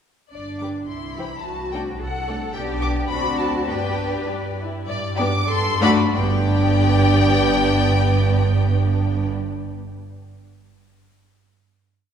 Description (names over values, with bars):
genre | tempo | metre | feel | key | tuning
quick classical-period movement for string orchestra | 89-110 BPM | 2/4 | rubato | G major | A4 = 440 Hz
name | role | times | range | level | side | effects
rich chamber violin section | melody | 0.3-9.3 s | D5 to D6 | -26 LUFS | left 4 dB | none
rich chamber cello section | bass | 0.3-9.3 s | G2 to B4 | -24 LUFS | right 3 dB | none
rich chamber double bass section | bass | 0.3-9.3 s | G1 to G2 | -25 LUFS | right 2 dB | none
rich chamber violin section | second line | 0.6-9.3 s | F#4 to D5 | -28 LUFS | left 5 dB | none
warm chamber viola section | accompaniment | 0.6-9.3 s | E3 to E4 | -24 LUFS | right 1 dB | none
room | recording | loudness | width
wet concert hall reverb, RT60 2.5 s | recorded in a church or concert hall | -18 LUFS | side -8 dB against mid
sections
0.3-4.9 A section; 4.9-6.1 coda; 6.1-8.8 final chord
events
slowing down 3.1-6.1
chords
0.3 G5; 0.9 C; 1.5 D7/C; 2.6 G/B; 3.1 D7; 3.7 G; 5.5 D7/G; 6.1 G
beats
| 0.32 0.89 | 1.45 2.01 | 2.55 3.10 | 3.67 4.26 | 4.87 5.49 | 6.14 6.80 | 7.46 8.12